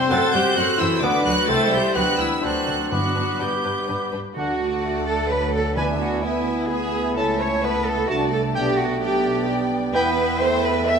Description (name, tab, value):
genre	quick classical-period movement for symphony orchestra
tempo	129 BPM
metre	3/4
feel	straight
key	G major, D major from 4.4 s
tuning	A4 = 440 Hz
part	rich chamber violin section	melody	0.0-11.0 s	F#5 to A6	-28 LUFS	equal	none
part	mellow clarinet	second line	0.0-11.0 s	D4 to G5	-31 LUFS	equal	none
part	rich chamber viola section	accompaniment	0.0-11.0 s	A3 to A4	-27 LUFS	right 1 dB	none
part	dark French horn section	sustained chords	0.0-10.1 s	E3 to E4	-30 LUFS	left 4 dB	none
part	clear trumpet	stabs	0.0-10.1 s	B4 to A5	-29 LUFS	equal	none
part	rich chamber cello section	bass	0.0-11.0 s	C3 to E5	-24 LUFS	right 2 dB	none
part	mellow silver concert flute	second line	0.1-11.0 s	E5 to D6	-30 LUFS	left 2 dB	none
part	rich chamber violin section	second line	0.1-11.0 s	D4 to E5	-34 LUFS	left 3 dB	none
part	warm bassoon	accompaniment	0.1-11.0 s	F#3 to D4	-29 LUFS	right 1 dB	none
part	rich chamber double bass section	bass	0.1-11.0 s	B1 to G2	-30 LUFS	right 3 dB	none
part	timpani	percussion	2.9-6.4 s	G2 to D3	-31 LUFS	equal	none
room	moderate scoring stage reverb, RT60 1.8 s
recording	none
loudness	-19 LUFS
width	side -6 dB against mid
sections	0.0-4.4 A section; 4.4-11.0 B section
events	none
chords	0.1 F#dim; 1.0 Bm/D; 1.5 Am; 2.0 G; 2.4 D7; 2.9 G; 4.4 D; 5.8 E7/D; 7.2 A/C#; 8.1 D7/C; 8.6 G/B; 9.9 Em